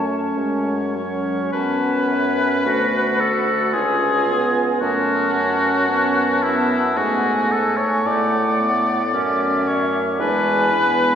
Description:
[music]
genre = classical, slow romantic movement for wind quintet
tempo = 51-58 BPM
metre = 3/4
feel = rubato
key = F# minor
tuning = A4 = 443 Hz
[part]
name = silver concert flute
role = melody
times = 0.0-11.2 s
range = E5 to A5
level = -26 LUFS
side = left 3 dB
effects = none
[part]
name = warm oboe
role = second line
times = 0.0-11.2 s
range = E4 to D5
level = -20 LUFS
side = left 2 dB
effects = none
[part]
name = bright clarinet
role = accompaniment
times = 0.0-11.2 s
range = A3 to F#4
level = -24 LUFS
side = right 2 dB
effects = none
[part]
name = warm French horn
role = accompaniment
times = 0.0-11.2 s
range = F#3 to C#4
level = -25 LUFS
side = equal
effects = none
[part]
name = mellow bassoon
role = bass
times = 0.0-11.2 s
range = C#2 to A2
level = -24 LUFS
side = right 2 dB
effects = none
[sound]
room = wet church reverb, RT60 3.6 s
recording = recorded in a church or concert hall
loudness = -17 LUFS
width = side -8 dB against mid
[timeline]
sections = 0.0-1.5 A section; 1.5-11.2 A section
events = none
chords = 0.0 F#m; 3.7 C#7; 4.8 F#m; 8.1 A; 10.2 E7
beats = 0.37 | 1.53 2.66 3.74 | 4.81 5.88 6.96 | 8.05 9.14 10.20

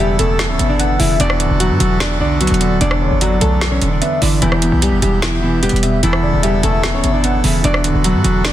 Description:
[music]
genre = hip hop, trap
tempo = 149 BPM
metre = 4/4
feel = half-time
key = unclear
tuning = A4 = 441 Hz
[part]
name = nylon-string guitar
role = melody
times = 0.0-8.5 s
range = E3 to D5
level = -19 LUFS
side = equal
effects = low-pass filter, tape echo
[part]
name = warm velvety synth lead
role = second line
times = 0.0-7.6 s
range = C#5 to F#5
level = -24 LUFS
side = left 2 dB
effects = chorus, tape echo
[part]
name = dark baby grand piano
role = accompaniment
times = 0.0-8.5 s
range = E2 to B3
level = -20 LUFS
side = right 2 dB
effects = low-pass filter
[part]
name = accordion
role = sustained chords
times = 0.0-8.5 s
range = E3 to A4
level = -24 LUFS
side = right 1 dB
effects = none
[part]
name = hard-hitting 808-style bass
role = bass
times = 0.0-8.5 s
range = D1 to G2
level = -17 LUFS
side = equal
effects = none
[part]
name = trap drum kit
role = drums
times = 0.2-8.5 s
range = hi-hat, rim click, snare drum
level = -21 LUFS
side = right 1 dB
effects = none
[sound]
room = little or no reverb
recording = dense, heavily limited modern master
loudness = -12 LUFS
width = side -12 dB against mid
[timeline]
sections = 0.0-8.5 A section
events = none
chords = 0.0 Aadd9/E; 1.2 D6; 2.8 Bm7/E; 4.4 Em; 6.0 Aadd9/E; 7.6 D6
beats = 0.39 0.80 | 1.20 1.60 2.00 2.41 | 2.81 3.21 3.61 4.02 | 4.42 4.82 5.22 5.63 | 6.03 6.43 6.83 7.24 | 7.64 8.04 8.45

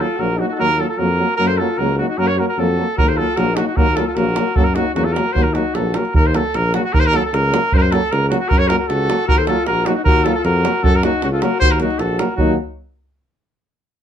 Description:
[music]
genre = balkan folk, Balkan brass band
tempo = 153 BPM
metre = 2/4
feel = straight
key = Eb dorian sharp4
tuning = A4 = 439 Hz
[part]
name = warm trumpet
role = melody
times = 0.0-12.6 s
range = Gb4 to Db5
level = -19 LUFS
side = right 2 dB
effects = none
[part]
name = warm alto saxophone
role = second line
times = 0.0-6.2, 8.5-12.6 s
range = Db4 to Bb4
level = -24 LUFS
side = left 6 dB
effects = none
[part]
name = clear euphonium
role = accompaniment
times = 0.0-12.6 s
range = Gb3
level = -24 LUFS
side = right 6 dB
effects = none
[part]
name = mellow French horn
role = accompaniment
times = 0.0-12.6 s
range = Bb3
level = -25 LUFS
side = left 7 dB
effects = none
[part]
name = warm tuba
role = bass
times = 0.2-12.6 s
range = Bb1 to Gb2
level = -20 LUFS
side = equal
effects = none
[part]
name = davul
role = percussion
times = 3.0-12.6 s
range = none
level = -19 LUFS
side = right 1 dB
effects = none
[sound]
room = moderate studio reverb, RT60 0.5 s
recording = dark, warm production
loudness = -14 LUFS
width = side -9 dB against mid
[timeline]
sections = 0.0-6.2 A section; 6.2-12.4 A section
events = speeding up 0.0-13.2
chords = 0.0 Ebm; 1.4 Gb; 3.0 Ebm; 4.6 Gb; 5.4 Ebm; 7.7 Gb; 9.3 Ebm; 10.8 Gb; 11.6 Ebm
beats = 0.19 | 0.59 0.99 | 1.39 1.79 | 2.19 2.59 | 2.98 3.38 | 3.78 4.18 | 4.57 4.97 | 5.36 5.76 | 6.15 6.54 | 6.94 7.33 | 7.72 8.11 | 8.50 8.89 | 9.28 9.67 | 10.06 10.45 | 10.84 11.23 | 11.61 12.00 | 12.39

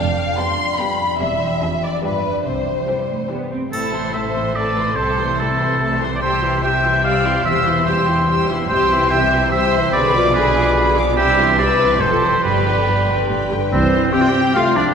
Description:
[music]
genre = cinematic, playful, whimsical film cue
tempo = 145 BPM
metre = 3/4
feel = straight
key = C major, A minor from 3.7 s, C major from 8.7 s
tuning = A4 = 440 Hz
[part]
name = warm studio violin section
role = melody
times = 0.0-14.9 s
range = B4 to E6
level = -25 LUFS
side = left 2 dB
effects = none
[part]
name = concert harp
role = arpeggios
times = 0.0-14.9 s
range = E2 to G5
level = -24 LUFS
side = left 2 dB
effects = none
[part]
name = rich studio double bass section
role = bass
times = 0.0-14.1 s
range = E1 to C2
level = -26 LUFS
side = right 2 dB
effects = none
[part]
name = warm studio cello section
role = bass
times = 0.0-14.1 s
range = C2 to C4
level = -25 LUFS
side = right 1 dB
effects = none
[part]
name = rich studio violin section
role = second line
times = 0.4-14.9 s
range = C4 to G5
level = -24 LUFS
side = left 3 dB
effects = none
[part]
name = rich studio viola section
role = accompaniment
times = 0.4-14.9 s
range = D3 to C5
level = -24 LUFS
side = left 1 dB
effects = none
[part]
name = warm oboe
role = second line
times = 3.7-14.8 s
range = G4 to G5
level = -18 LUFS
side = right 1 dB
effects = none
[part]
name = triangle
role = percussion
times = 3.7-4.5 s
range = none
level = -38 LUFS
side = left 1 dB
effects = none
[part]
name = bright clarinet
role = second line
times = 13.7-14.9 s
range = C4 to G4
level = -19 LUFS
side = equal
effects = none
[part]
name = mellow French horn section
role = sustained chords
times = 13.7-14.9 s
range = E3 to C4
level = -22 LUFS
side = left 1 dB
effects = none
[part]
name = dark tuba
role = bass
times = 13.7-14.1 s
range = C2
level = -25 LUFS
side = right 4 dB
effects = none
[sound]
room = wet cathedral reverb, RT60 4.7 s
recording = recorded in a church or concert hall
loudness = -15 LUFS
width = side -6 dB against mid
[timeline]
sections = 0.0-3.7 A section; 3.7-13.7 B section; 13.7-14.9 A section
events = none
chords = 0.0 G7/F; 1.2 C/E; 1.6 Dm7b5/F; 2.0 G7; 2.5 C; 3.7 Am; 5.0 Am/C; 6.2 C; 7.5 C/E; 8.7 C; 9.9 Bdim7; 11.2 C; 12.0 Fmaj7; 12.4 G; 13.7 C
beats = 0.38 0.79 | 1.20 1.62 2.03 | 2.46 2.88 3.31 | 3.73 4.14 4.56 | 4.98 5.39 5.81 | 6.22 6.64 7.05 | 7.46 7.87 8.29 | 8.70 9.11 9.52 | 9.94 10.35 10.77 | 11.18 11.59 12.01 | 12.44 12.87 13.29 | 13.72 14.14 14.55

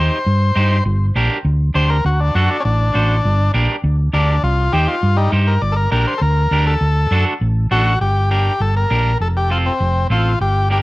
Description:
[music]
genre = latin, cumbia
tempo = 202 BPM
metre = 4/4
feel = straight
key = G harmonic minor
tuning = A4 = 440 Hz
[part]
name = combo organ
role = melody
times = 0.0-10.8 s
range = G3 to D5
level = -20 LUFS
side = left 2 dB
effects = analog delay
[part]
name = electric guitar at the edge of break-up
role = accompaniment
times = 0.0-10.8 s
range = C4 to C5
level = -21 LUFS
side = right 2 dB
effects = warbly pitch drift
[part]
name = hollow-body short-scale fingered electric bass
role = bass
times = 0.0-10.8 s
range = F1 to G2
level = -16 LUFS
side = equal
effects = none
[sound]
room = light reverb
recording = worn, warbling old tape, cassette tape, warbly pitch drift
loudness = -14 LUFS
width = side -19 dB against mid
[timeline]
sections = 0.0-8.0 A section; 8.0-10.8 B section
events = transistor combo organ solo 0.0-8.0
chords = 0.0 Cm; 0.9 Gm; 2.1 D7; 3.2 Gm; 4.4 Cm; 5.6 Gm; 6.8 D; 8.0 Gm; 9.2 F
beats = 0.27 0.56 | 0.86 1.16 1.46 1.75 | 2.05 2.35 2.65 2.95 | 3.24 3.54 3.84 4.14 | 4.43 4.73 5.03 5.33 | 5.62 5.92 6.22 6.52 | 6.82 7.12 7.41 7.71 | 8.01 8.31 8.61 8.91 | 9.21 9.50 9.80 10.10 | 10.40 10.70

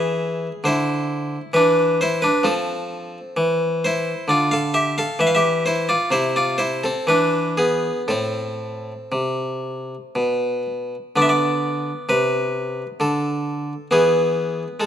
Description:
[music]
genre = classical, baroque-style suite movement for harpsichord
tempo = 58-68 BPM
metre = 3/4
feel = rubato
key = unclear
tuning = A4 = 439 Hz
[part]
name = harpsichord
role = solo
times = 0.0-14.9 s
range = A2 to F5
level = -18 LUFS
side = equal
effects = none
[sound]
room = light reverb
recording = close, detailed microphones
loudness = -18 LUFS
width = side -10 dB against mid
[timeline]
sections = 0.0-11.1 A section; 11.1-14.9 A section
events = none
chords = 0.0 E7; 2.4 F; 4.3 Dmadd9; 5.2 C69; 7.1 E7; 8.1 Am; 11.1 Cmaj7sus2; 13.9 E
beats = 0.65 1.54 | 2.45 3.37 4.29 | 5.20 6.12 7.07 | 8.08 9.12 10.15 | 11.14 12.07 12.99 | 13.90 14.79

